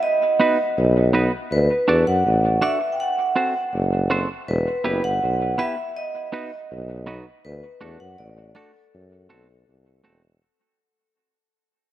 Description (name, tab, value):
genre	roots reggae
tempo	81 BPM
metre	4/4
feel	straight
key	unclear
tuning	A4 = 440 Hz
part	vibraphone with medium hard mallets	melody	0.0-10.0 s	A4 to G5	-22 LUFS	right 1 dB	dub echo
part	semi-hollow electric guitar	accompaniment	0.4-10.2 s	A3 to D5	-26 LUFS	right 2 dB	dub echo
part	warm tuba	bass	0.8-10.4 s	E1 to F#2	-21 LUFS	equal	none
room	light reverb, small room ambience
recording	rough home demo mix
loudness	-18 LUFS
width	side -13 dB against mid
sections	0.0-10.4 A section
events	fade-out 0.0-10.4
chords	0.0 B; 1.5 D; 3.0 F#dim; 4.5 Em; 6.0 B; 7.4 D; 8.9 F#dim